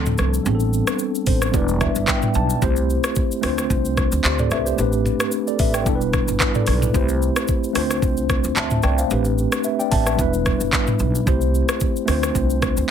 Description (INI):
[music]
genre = afrobeats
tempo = 111 BPM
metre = 4/4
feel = swing 55% on 16ths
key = unclear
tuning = A4 = 439 Hz
[part]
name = mellow tine electric piano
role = accompaniment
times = 0.0-12.9 s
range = F3 to A5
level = -21 LUFS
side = equal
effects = medium stereo tremolo
[part]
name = upright bass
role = bass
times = 0.0-12.9 s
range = E1 to D2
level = -22 LUFS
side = equal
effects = none
[part]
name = afro-pop drum kit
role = drums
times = 0.1-12.9 s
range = handclaps, hi-hat, kick drum, rim click, shaker, toms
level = -22 LUFS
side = equal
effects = none
[sound]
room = light reverb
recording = heavily compressed radio sound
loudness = -17 LUFS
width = side -8 dB against mid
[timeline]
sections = 0.0-12.9 A section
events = tine electric piano fill 1.0-2.6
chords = 0.5 Am11; 1.5 Em7; 2.6 C6; 3.4 Dm7; 4.8 Am11; 5.9 Em7; 6.9 C6; 7.8 Dm7; 9.1 Am11; 10.2 Em7; 11.3 C6; 12.1 Dm7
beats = | 0.46 1.00 1.54 2.08 | 2.62 3.16 3.70 4.24 | 4.78 5.32 5.87 6.41 | 6.95 7.49 8.03 8.57 | 9.11 9.65 10.19 10.73 | 11.27 11.81 12.35 12.89